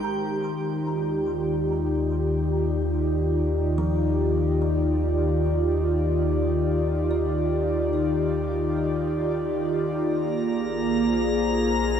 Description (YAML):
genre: ambient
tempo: 72 BPM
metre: 3/4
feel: straight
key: Eb major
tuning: A4 = 440 Hz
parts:
  - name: airy breathy pad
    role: sustained chords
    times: 0.0-12.0 s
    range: Eb3 to D5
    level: -23 LUFS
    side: equal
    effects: chorus, shimmer reverb
  - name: kalimba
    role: arpeggios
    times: 0.0-11.1 s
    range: F3 to C6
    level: -39 LUFS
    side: right 2 dB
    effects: ping-pong delay, shimmer reverb
  - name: deep rumbling drone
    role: bass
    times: 1.2-12.0 s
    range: Bb1 to Eb2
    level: -28 LUFS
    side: equal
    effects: built-in reverb
  - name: drifting glass-harmonics texture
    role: texture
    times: 0.0-0.1, 10.3-12.0 s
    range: Bb5 to Bb6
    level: -34 LUFS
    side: left 3 dB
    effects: chorus, built-in reverb, shimmer reverb
room: wet huge ambient reverb, RT60 8.2 s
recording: dreamy mix soaked in reverb, cassette tape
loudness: -22 LUFS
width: side -8 dB against mid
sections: 0.0-10.0 A section; 10.0-12.0 B section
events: fade-out on kalimba 0.0-10.0; filter sweep on analog synth pad 0.0-10.0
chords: 0.0 Ebmaj9; 10.0 Bb9